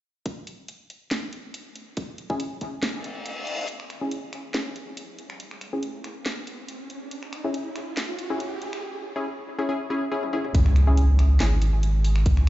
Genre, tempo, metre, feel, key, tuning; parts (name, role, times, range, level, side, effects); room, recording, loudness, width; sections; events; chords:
deep dubstep; 140 BPM; 4/4; half-time; C# minor; A4 = 440 Hz
electronic kick drum; drums; 0.3-2.7, 10.5-12.3 s; -24 LUFS; equal; high-pass filter on kick, high-pass filter on room
garage drum kit; drums; 0.3-12.5 s; finger snaps, handclaps, hi-hat, snare drum, toms; -34 LUFS; equal; high-pass filter on hats, high-pass filter on snare, high-pass filter on toms, high-pass filter on room
filtered dub chord stab; stabs; 2.3-11.5 s; C#4 to G#4; -31 LUFS; left 1 dB; chorus, dub echo
reverse cymbal, riser and impact; sound effects; 3.0-12.3 s; -32 LUFS; equal
soft dub sub bass; bass; 10.5-12.5 s; G#1 to C#2; -18 LUFS; equal; tube saturation
light reverb; played on a big sound system in a bare room, stone room reverb, nothing above 7.7 kHz; -23 LUFS; side -16 dB against mid
0.3-3.7 A section; 3.7-10.5 B section; 10.5-12.5 C section
kick drops out 2.8-3.7; reverse cymbal 3.0-3.7; build-up 3.7-10.5; riser 3.7-8.8; drum fill 10.2-10.5; drop 10.5-12.5; impact 10.5-12.3
0.3 C#m